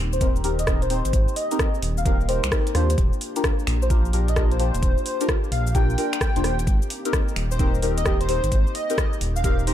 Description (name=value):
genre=UK garage, two-step garage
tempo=130 BPM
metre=4/4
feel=swing 65% on 16ths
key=Ab lydian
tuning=A4 = 440 Hz
part: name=warm analog pad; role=sustained chords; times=0.0-9.7 s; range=Bb3 to G4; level=-36 LUFS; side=equal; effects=chorus, sidechain pumping
part: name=dark detuned saw bass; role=bass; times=0.0-9.7 s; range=Eb1 to Eb2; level=-23 LUFS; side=equal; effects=none
part: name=airy dreamy lead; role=melody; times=0.1-9.7 s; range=C5 to G5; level=-29 LUFS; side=equal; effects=chorus, ping-pong delay
part: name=garage drum kit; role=drums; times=0.1-9.7 s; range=finger snaps, hi-hat, rim click, shaker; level=-29 LUFS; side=left 1 dB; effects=none
part: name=deep mellow chord stab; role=stabs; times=0.2-9.7 s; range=C4 to C5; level=-28 LUFS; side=left 2 dB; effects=chorus, phaser
part: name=electronic kick drum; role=drums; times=0.2-9.6 s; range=none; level=-22 LUFS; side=equal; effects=none
room=little or no reverb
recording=dark, warm production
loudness=-20 LUFS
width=side -11 dB against mid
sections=0.0-9.7 A section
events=none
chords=0.0 Abmaj9; 2.7 Ebmaj9; 6.7 Abmaj9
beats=0.21 0.67 | 1.13 1.59 2.06 2.52 | 2.98 3.44 3.90 4.36 | 4.83 5.29 5.75 6.21 | 6.67 7.13 7.59 8.06 | 8.52 8.98 9.44